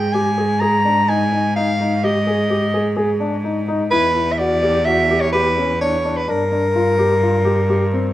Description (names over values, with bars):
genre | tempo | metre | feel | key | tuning
contemporary instrumental, chamber music in an uneven meter | 127 BPM | 5/4 | straight | unclear | A4 = 440 Hz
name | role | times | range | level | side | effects
mellow soprano saxophone | melody | 0.0-8.1 s | Bb4 to Bb5 | -18 LUFS | equal | none
dark concert grand piano | arpeggios | 0.0-8.1 s | C4 to Ab4 | -21 LUFS | left 1 dB | none
bright cello | bass | 0.0-8.1 s | E2 to Ab2 | -20 LUFS | equal | none
room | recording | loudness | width
moderate recital hall reverb, RT60 1.7 s | none | -15 LUFS | side -14 dB against mid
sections
0.0-8.1 A section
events
none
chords
0.0 Ab5; 3.9 Em; 6.3 Gm